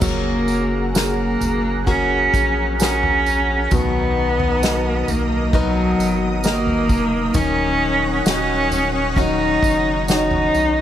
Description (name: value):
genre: pop ballad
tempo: 66 BPM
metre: 4/4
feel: straight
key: F# major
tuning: A4 = 440 Hz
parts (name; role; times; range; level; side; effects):
- warm cello; melody; 0.0-10.8 s; F#3 to D#4; -19 LUFS; right 1 dB; none
- clear grand piano; accompaniment; 0.0-10.8 s; B2 to D#5; -27 LUFS; right 3 dB; none
- lush unison pad; sustained chords; 0.5-10.8 s; G#4 to D#6; -29 LUFS; equal; chorus, phaser
- picked plugged-in steel-string acoustic guitar; arpeggios; 0.0-10.8 s; B2 to A#4; -26 LUFS; left 7 dB; tape echo
- saturated sub bass; bass; 0.0-10.8 s; D#1 to B1; -25 LUFS; equal; none
- unplugged drum kit; drums; 0.0-10.5 s; crash cymbal, kick drum, snare drum, toms; -23 LUFS; equal; none
- tambourine; percussion; 0.0-10.8 s; none; -31 LUFS; right 7 dB; none
room: little or no reverb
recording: none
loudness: -16 LUFS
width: side -10 dB against mid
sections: 0.0-10.8 A section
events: none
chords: 0.0 F#add9; 3.7 Bmaj7; 7.3 D#m7